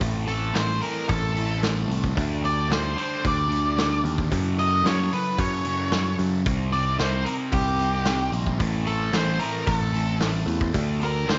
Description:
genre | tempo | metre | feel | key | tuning
psychedelic rock | 112 BPM | 4/4 | straight | unclear | A4 = 441 Hz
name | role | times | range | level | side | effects
overdriven combo organ | sustained chords | 0.0-11.4 s | C4 to Bb4 | -41 LUFS | equal | none
fuzz guitar | riff | 0.0-11.4 s | F#2 to D4 | -31 LUFS | equal | distortion, phaser
picked electric bass | bass | 0.0-11.4 s | A1 to F#2 | -28 LUFS | equal | none
vintage drum kit | drums | 0.0-11.4 s | hi-hat, kick drum, snare drum | -31 LUFS | equal | none
octave-fuzz lead guitar | melody | 0.3-11.4 s | G4 to Eb5 | -29 LUFS | equal | distortion, slapback echo
room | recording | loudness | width
light reverb, studio reverb | nothing above 7.9 kHz | -24 LUFS | mono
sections
0.0-11.4 A section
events
none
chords
0.0 Am; 2.2 Dsus4; 4.3 F#m7; 6.4 Cm7; 8.6 Am; 10.7 Dsus4

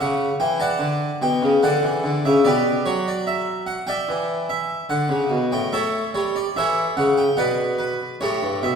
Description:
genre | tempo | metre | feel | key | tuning
classical, baroque-style suite movement for harpsichord | 73 BPM | 4/4 | rubato | unclear | A4 = 442 Hz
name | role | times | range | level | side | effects
harpsichord | solo | 0.0-8.8 s | G2 to A5 | -19 LUFS | equal | none
room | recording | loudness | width
wet scoring stage reverb, RT60 1.6 s | heard from further back in the room | -19 LUFS | side -6 dB against mid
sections
0.0-8.8 A section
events
none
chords
0.0 A; 0.8 D; 2.4 G/B; 4.1 E5; 5.7 A7; 7.4 Bm; 8.2 A7

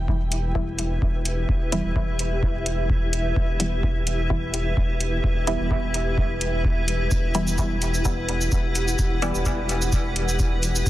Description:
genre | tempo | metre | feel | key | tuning
dub techno | 128 BPM | 4/4 | swing 54% on 16ths | E minor | A4 = 440 Hz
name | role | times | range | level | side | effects
granular cloud pad | sustained chords | 0.0-10.9 s | E4 to F#5 | -28 LUFS | equal | built-in reverb, sidechain pumping
round analog bass | bass | 0.0-10.9 s | E1 | -27 LUFS | equal | sidechain pumping
electronic kick drum | drums | 0.1-10.9 s | none | -24 LUFS | equal | none
electronic hi-hat and shaker | drums | 0.3-10.9 s | none | -29 LUFS | right 1 dB | none
filtered dub chord stab | stabs | 0.6-10.9 s | E3 to E4 | -30 LUFS | equal | chorus, phaser, sidechain pumping, dub echo
room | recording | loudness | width
digital ambience | dense, heavily limited modern master, vinyl crackle | -21 LUFS | side -15 dB against mid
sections
0.0-10.9 A section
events
none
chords
0.0 Em

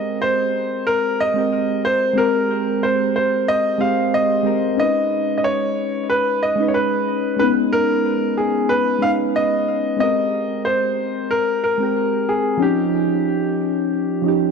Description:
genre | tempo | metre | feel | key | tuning
chillout | 92 BPM | 4/4 | swing 55% on 16ths | Ab major | A4 = 440 Hz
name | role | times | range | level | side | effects
warm grand piano | melody | 0.0-14.5 s | G4 to F5 | -19 LUFS | equal | ping-pong delay
soft electric-piano-like synth keys | accompaniment | 0.0-14.5 s | F3 to C5 | -20 LUFS | moving between left 6 dB and right 6 dB | chorus, auto-pan, ping-pong delay
room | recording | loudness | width
moderate lush hall reverb, RT60 2.4 s | none | -17 LUFS | side -5 dB against mid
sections
0.0-14.5 A section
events
none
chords
0.0 Abmaj9; 4.8 B69; 10.0 Abmaj9; 12.6 Eb9

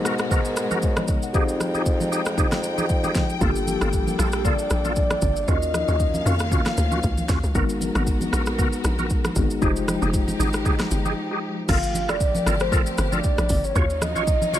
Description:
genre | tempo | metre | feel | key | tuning
amapiano | 116 BPM | 4/4 | swing 55% on 16ths | G phrygian | A4 = 438 Hz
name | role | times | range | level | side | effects
mellow tine electric piano | accompaniment | 0.0-11.7 s | G3 to Gb5 | -29 LUFS | left 3 dB | medium stereo tremolo
warm symphonic string section | sustained chords | 0.0-14.6 s | Cb3 to G5 | -31 LUFS | left 1 dB | none
bright tonewheel organ | stabs | 0.0-14.6 s | Bb3 to Db5 | -29 LUFS | equal | chorus vibrato, fast rotary speaker, ping-pong delay
warm bassoon | bass | 0.0-3.4 s | F2 to Ab2 | -27 LUFS | equal | none
deep house drum kit | drums | 0.1-14.6 s | crash cymbal, hi-hat, kick drum, rim click, shaker, snare drum | -24 LUFS | equal | none
congas | percussion | 0.3-14.6 s | none | -32 LUFS | right 1 dB | none
soft octave-layered synth lead | melody | 3.4-7.3, 11.7-14.6 s | G4 to F5 | -26 LUFS | equal | chorus, phaser, ping-pong delay
tight log drum bass | bass | 3.4-14.6 s | F1 to F2 | -25 LUFS | equal | none
room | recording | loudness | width
little or no reverb | lossy compression artefacts | -20 LUFS | side -12 dB against mid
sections
0.0-11.7 A section; 11.7-14.6 B section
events
break 11.2-11.7; drop 11.7-14.6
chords
0.0 Abm9; 1.3 Fm9; 3.4 Gm9; 5.5 Ebm9; 7.5 Abm9; 9.6 Fm9; 11.7 Gm9; 13.8 Ebm9

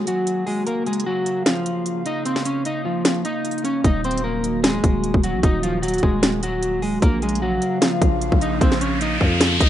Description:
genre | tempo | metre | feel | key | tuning
hip hop, trap | 151 BPM | 4/4 | half-time | Bb minor | A4 = 438 Hz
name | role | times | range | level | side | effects
electric guitar at the edge of break-up | melody | 0.0-9.7 s | F3 to Eb5 | -22 LUFS | equal | spring reverb, low-pass filter, ping-pong delay
warbly tape-like pad | sustained chords | 0.0-9.7 s | Db3 to F5 | -27 LUFS | right 1 dB | chorus, built-in reverb
trap drum kit | drums | 0.1-9.7 s | hi-hat, kick drum, snare drum | -19 LUFS | equal | none
growling 808-style bass | bass | 3.8-9.7 s | Eb1 to F2 | -25 LUFS | equal | none
riser | sound effects | 7.8-9.7 s | none | -25 LUFS | equal | none
room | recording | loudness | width
digital ambience | rough home demo mix, nothing above 10.9 kHz | -18 LUFS | side -12 dB against mid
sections
0.0-9.7 A section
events
break 0.0-3.8; riser 7.8-9.7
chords
0.0 Ebm; 0.7 Bbm; 3.8 Ebm; 7.0 Bbm

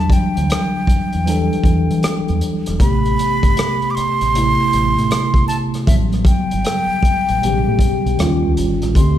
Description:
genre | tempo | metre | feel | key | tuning
R&B, neo-soul | 78 BPM | 4/4 | swing 64% on 16ths | A dorian | A4 = 441 Hz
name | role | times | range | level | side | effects
breathy concert flute | melody | 0.0-9.2 s | E5 to D6 | -21 LUFS | right 1 dB | none
mellow tine electric piano | accompaniment | 0.0-9.2 s | B2 to A4 | -19 LUFS | equal | medium stereo tremolo
deep dub fingered electric bass | bass | 0.0-9.2 s | E1 to E3 | -21 LUFS | equal | none
crunchy breakbeat drum kit | drums | 0.1-9.2 s | hi-hat, kick drum, rim click | -18 LUFS | equal | none
room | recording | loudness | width
moderate concert hall reverb, RT60 2.3 s | recorded in a church or concert hall | -14 LUFS | side -11 dB against mid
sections
0.0-9.2 A section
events
none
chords
0.0 Em9; 2.8 Am9; 5.9 A13; 8.2 D#9

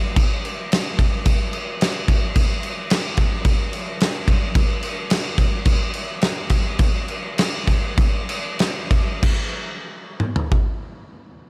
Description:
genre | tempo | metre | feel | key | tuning
rock | 93-110 BPM | 4/4 | straight | none | none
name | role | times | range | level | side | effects
loose indie drum kit | drums | 0.2-10.7 s | crash cymbal, kick drum, snare drum, toms | -21 LUFS | equal | none
room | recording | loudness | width
light reverb | none | -21 LUFS | mono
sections
0.0-9.2 A section; 9.2-11.5 B section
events
slowing down 4.6-9.2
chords
none

